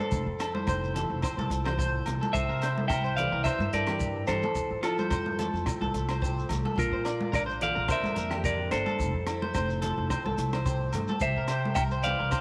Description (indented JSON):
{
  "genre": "highlife guitar band",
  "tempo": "108 BPM",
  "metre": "4/4",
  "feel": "swing 53% on 16ths",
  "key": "unclear",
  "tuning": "A4 = 440 Hz",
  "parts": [
    { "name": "clean electric guitar", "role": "melody", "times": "0.0-12.4 s", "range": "F4 to G5", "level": "-33 LUFS", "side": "equal", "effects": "none" },
    { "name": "picked old ladder-braced acoustic guitar", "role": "accompaniment", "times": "0.0-12.4 s", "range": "F2 to G4", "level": "-41 LUFS", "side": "equal", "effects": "none" },
    { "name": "clean electric guitar", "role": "arpeggios", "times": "0.0-12.4 s", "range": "G4 to D5", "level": "-37 LUFS", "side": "equal", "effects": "subtle chorus" },
    { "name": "upright bass", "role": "bass", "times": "0.1-12.3 s", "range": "F1 to F3", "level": "-35 LUFS", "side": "equal", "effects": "none" },
    { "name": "compact cocktail drum kit", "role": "drums", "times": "0.1-12.4 s", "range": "hi-hat, kick drum, rim click", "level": "-39 LUFS", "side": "equal", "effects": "none" },
    { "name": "shekere", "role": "percussion", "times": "0.1-12.4 s", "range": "none", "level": "-42 LUFS", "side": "equal", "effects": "none" },
    { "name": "agogo bells", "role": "percussion", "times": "0.4-12.4 s", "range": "none", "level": "-43 LUFS", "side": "equal", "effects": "none" },
    { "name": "congas", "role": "percussion", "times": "0.5-12.2 s", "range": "none", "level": "-39 LUFS", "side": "equal", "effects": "none" }
  ],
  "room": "moderate echo chamber reverb, RT60 2.4 s",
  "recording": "none",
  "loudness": "-29 LUFS",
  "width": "mono",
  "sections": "0.0-12.4 A section",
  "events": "none",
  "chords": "0.1 Fmaj7; 2.3 C; 4.6 Fmaj7; 6.8 Bb; 9.0 Fmaj7; 11.2 C"
}